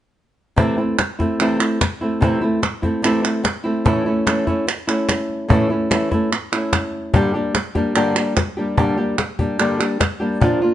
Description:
flamenco; 146 BPM; 4/4; straight; A4 = 441 Hz
flamenco guitar; melody; 0.6-10.7 s; G2 to G4; -19 LUFS; equal
cajon; percussion; 0.6-10.6 s; -20 LUFS; left 2 dB
palmas hand claps; percussion; 0.6-10.6 s; -23 LUFS; right 6 dB
moderate studio reverb, RT60 0.9 s; nothing above 10.5 kHz; -17 LUFS; side -12 dB against mid
0.6-10.7 A section
0.6 C6; 3.9 A; 7.1 Gm
| 0.58 0.99 1.40 1.81 | 2.22 2.63 3.04 3.45 | 3.86 4.27 4.68 5.09 | 5.50 5.91 6.32 6.73 | 7.14 7.55 7.96 8.37 | 8.78 9.19 9.60 10.01 | 10.42

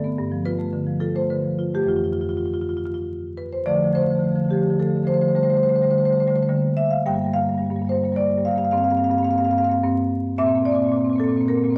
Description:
classical, contemporary piece for solo marimba; 107 BPM; 3/4; rubato; F lydian, D minor from 3.7 s; A4 = 441 Hz
marimba with medium hard mallets; solo; 0.0-11.8 s; F2 to G5; -21 LUFS; equal
moderate stone room reverb, RT60 1.4 s; vinyl crackle; -21 LUFS; mono
0.0-3.7 A section; 3.7-11.8 B section
0.0 G9; 1.9 Fmaj7; 3.7 Dm7; 5.4 D7sus4; 6.5 Gm/D; 7.1 Gm7; 8.7 C5/G; 10.4 Bbadd9
| 0.16 0.72 1.29 | 1.87 2.47 3.06 | 3.66 4.23 4.80 | 5.37 5.94 6.50 | 7.07 7.63 8.18 | 8.73 9.29 9.84 | 10.38 10.93 11.48

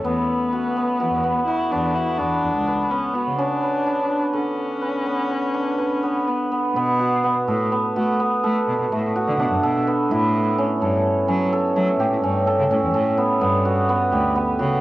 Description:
contemporary instrumental, chamber music in an uneven meter; 126 BPM; 7/4; straight; B minor; A4 = 439 Hz
warm viola; second line; 0.0-6.8 s; B3 to E4; -25 LUFS; left 2 dB; cassette tape, tape echo
hammered dulcimer; arpeggios; 0.0-14.8 s; D3 to B4; -20 LUFS; right 1 dB; cassette tape
rich cello; bass; 0.0-14.8 s; C#2 to A3; -25 LUFS; equal
moderate spring reverb, RT60 1.2 s, small room ambience; home recording on cassette, nothing above 10.3 kHz; -18 LUFS; side -16 dB against mid
0.0-6.8 A section; 6.8-14.8 B section
0.1 Esus2; 3.4 Bmadd9; 6.8 Bm7; 10.1 A7; 13.4 Gmaj7#11
| 0.05 0.53 1.00 1.48 1.96 2.44 2.91 | 3.39 3.86 4.34 4.82 5.30 5.79 6.28 | 6.76 7.24 7.72 8.20 8.68 9.15 9.63 | 10.11 10.58 11.05 11.52 12.00 12.47 12.94 | 13.41 13.89 14.36

